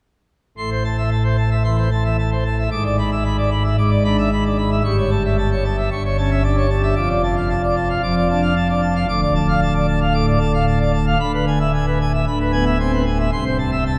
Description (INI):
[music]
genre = classical, organ toccata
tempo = 113 BPM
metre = 4/4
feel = straight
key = A minor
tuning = A4 = 440 Hz
[part]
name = pipe organ, plenum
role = solo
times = 0.6-14.0 s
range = C1 to D6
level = -18 LUFS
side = equal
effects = none
[sound]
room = wet church reverb, RT60 3.5 s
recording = heard from further back in the room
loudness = -19 LUFS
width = mono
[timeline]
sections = 0.6-14.0 A section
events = none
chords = 0.6 Am; 2.7 E7/G#; 4.8 A7/G; 7.0 Dm/F; 9.1 Dm; 11.2 E7/D; 13.3 Am/C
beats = | 0.58 1.11 1.65 2.18 | 2.72 3.25 3.78 4.31 | 4.85 5.38 5.91 6.44 | 6.97 7.50 8.03 8.56 | 9.09 9.61 10.14 10.67 | 11.20 11.73 12.26 12.79 | 13.32 13.86